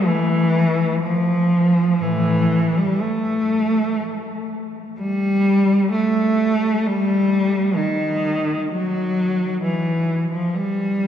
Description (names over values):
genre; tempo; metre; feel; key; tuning
classical, free, expressive piece for unaccompanied cello; 60-66 BPM; 4/4; rubato; unclear; A4 = 440 Hz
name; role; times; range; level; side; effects
warm cello; solo; 0.0-11.1 s; A2 to A3; -17 LUFS; equal; none
room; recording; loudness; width
wet cathedral reverb, RT60 4.7 s; none; -17 LUFS; side -9 dB against mid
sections
0.0-11.1 A section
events
none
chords
none